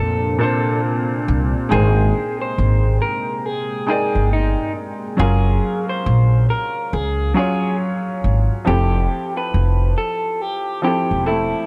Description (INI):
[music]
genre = lo-fi hip hop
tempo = 69 BPM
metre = 4/4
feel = swing 60% on 16ths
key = unclear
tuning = A4 = 442 Hz
[part]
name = electric guitar through a small old amp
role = melody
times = 0.0-11.7 s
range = Eb4 to C5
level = -26 LUFS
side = equal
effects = low-pass filter, analog delay
[part]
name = felt-muted upright piano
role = accompaniment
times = 0.0-11.7 s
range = Bb2 to G5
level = -25 LUFS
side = equal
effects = low-pass filter
[part]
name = deep dark ambient pad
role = sustained chords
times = 0.0-5.2 s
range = C3 to G5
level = -32 LUFS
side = equal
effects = chorus, built-in reverb, low-pass filter
[part]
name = upright bass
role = bass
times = 0.0-11.5 s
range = E1 to F2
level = -19 LUFS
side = equal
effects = none
[sound]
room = light reverb, studio reverb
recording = none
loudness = -19 LUFS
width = mono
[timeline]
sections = 0.0-11.7 A section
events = none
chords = 0.0 Bbmaj9; 1.7 Abmaj9; 5.2 Gbmaj9; 8.7 Fmaj9